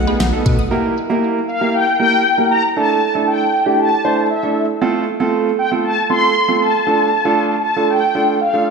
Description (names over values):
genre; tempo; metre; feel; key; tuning
synth-pop; 117 BPM; 4/4; straight; unclear; A4 = 436 Hz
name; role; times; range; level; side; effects
mellow synth brass; melody; 0.0-8.7 s; E5 to C6; -16 LUFS; left 2 dB; chorus, phaser
string machine, violas; sustained chords; 0.0-0.7 s; Eb3 to F#4; -25 LUFS; equal; ensemble chorus
round analog bass; bass; 0.0-0.6 s; B1 to B2; -17 LUFS; left 1 dB; none
warm grand piano; accompaniment; 0.1-8.7 s; A3 to C5; -17 LUFS; right 5 dB; none
resonant blip pluck; arpeggios; 0.1-0.7 s; D#4 to D#6; -30 LUFS; left 1 dB; phaser, ping-pong delay
pop drum kit; drums; 0.2-0.6 s; hi-hat, kick drum, snare drum; -19 LUFS; equal; none
room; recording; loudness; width
moderate lush hall reverb, RT60 2.2 s; played on a big sound system in a bare room, stone room reverb; -13 LUFS; side -4 dB against mid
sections
0.7-8.7 A section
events
none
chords
0.0 B7; 0.7 Edim; 2.8 Asus4; 4.8 F; 6.9 Dm